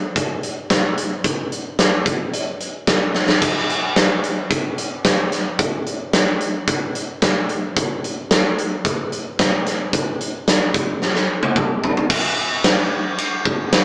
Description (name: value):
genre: rock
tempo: 110 BPM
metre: 4/4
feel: straight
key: none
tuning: none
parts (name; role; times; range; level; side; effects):
- big rock drum kit; drums; 0.2-13.8 s; crash cymbal, hi-hat, kick drum, ride cymbal, snare drum, toms; -20 LUFS; equal; none
room: light reverb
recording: band playing live in one room, small speaker sound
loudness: -20 LUFS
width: mono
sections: 0.0-12.1 A section; 12.1-13.8 B section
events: drum fill 3.1, 11.0-12.1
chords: none